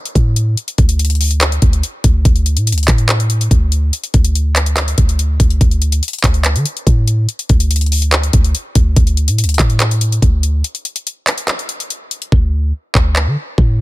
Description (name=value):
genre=hip hop, trap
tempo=143 BPM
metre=4/4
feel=half-time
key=unclear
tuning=A4 = 440 Hz
part: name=trap drum kit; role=drums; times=0.1-13.7 s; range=handclaps, hi-hat, kick drum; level=-14 LUFS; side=equal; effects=none
part: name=warm 808-style bass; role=bass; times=0.2-13.8 s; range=D2 to D3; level=-14 LUFS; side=equal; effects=none
room=little or no reverb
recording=dense, heavily limited modern master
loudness=-12 LUFS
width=side -18 dB against mid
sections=0.0-12.3 A section; 12.3-13.8 B section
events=break 10.6-12.3; hi-hats muted 12.3-13.8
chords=none